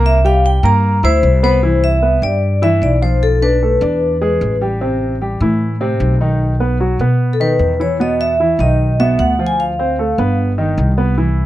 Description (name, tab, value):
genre	jazz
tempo	151 BPM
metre	4/4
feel	straight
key	C major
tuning	A4 = 440 Hz
part	warm concert grand piano	accompaniment	0.0-11.5 s	B2 to E6	-18 LUFS	right 1 dB	none
part	upright bass	bass	0.0-11.5 s	G1 to B2	-15 LUFS	equal	none
part	vibraphone with medium mallets	melody	0.1-4.6, 7.3-10.3 s	A4 to Bb5	-16 LUFS	left 1 dB	none
room	little or no reverb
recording	dry, close 1970s-style studio recording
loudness	-12 LUFS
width	side -14 dB against mid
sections	0.0-1.6 A section; 1.6-11.5 B section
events	vibraphone solo 0.0-1.6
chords	0.0 C7; 1.6 Cmaj7; 3.2 Bm7b5; 4.0 E7; 4.8 Am9; 6.4 B; 8.0 E5; 9.6 Dm7; 10.4 Gaug